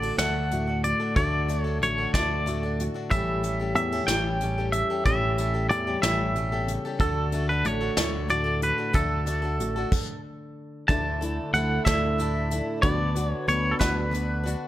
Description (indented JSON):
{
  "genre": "indie folk with a building arrangement",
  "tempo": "62 BPM (dotted quarters)",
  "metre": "6/8",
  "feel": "straight",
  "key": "unclear",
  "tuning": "A4 = 441 Hz",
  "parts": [
    { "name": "twangy electric guitar", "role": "melody", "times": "0.0-14.5 s", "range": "A4 to A5", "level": "-27 LUFS", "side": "right 1 dB", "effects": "tremolo, analog delay" },
    { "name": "fingerpicked steel-string acoustic guitar", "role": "accompaniment", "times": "0.0-14.7 s", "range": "E2 to G4", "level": "-32 LUFS", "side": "equal", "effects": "none" },
    { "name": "picked plugged-in swing-style acoustic guitar", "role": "accompaniment", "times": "0.0-14.7 s", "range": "A2 to B4", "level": "-34 LUFS", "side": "left 6 dB", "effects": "none" },
    { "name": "fingered electric bass", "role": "bass", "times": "0.0-14.5 s", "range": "A1 to E2", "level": "-28 LUFS", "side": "equal", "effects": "none" },
    { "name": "soft brush drum kit", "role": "drums", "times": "0.2-14.6 s", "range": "crash cymbal, hi-hat, kick drum, snare drum", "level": "-28 LUFS", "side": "equal", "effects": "none" },
    { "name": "bright upright piano", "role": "accompaniment", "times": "10.9-14.7 s", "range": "D2 to D5", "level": "-37 LUFS", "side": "right 4 dB", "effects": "none" },
    { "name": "warm brass ensemble", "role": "sustained chords", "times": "10.9-14.7 s", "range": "D3 to B4", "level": "-37 LUFS", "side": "right 3 dB", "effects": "none" }
  ],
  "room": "light reverb, small room ambience",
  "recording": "none",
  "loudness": "-23 LUFS",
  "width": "side -14 dB against mid",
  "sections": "0.0-10.9 A section; 10.9-14.7 B section",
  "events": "stop 9.9-10.9",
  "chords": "0.0 D; 3.1 A7; 7.0 D; 10.9 Dsus2; 12.8 Bm/D",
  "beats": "0.19 | 1.17 2.14 | 3.11 4.08 | 5.06 6.03 | 7.00 7.97 | 8.95 9.92 | 10.89 11.86 | 12.83 13.80"
}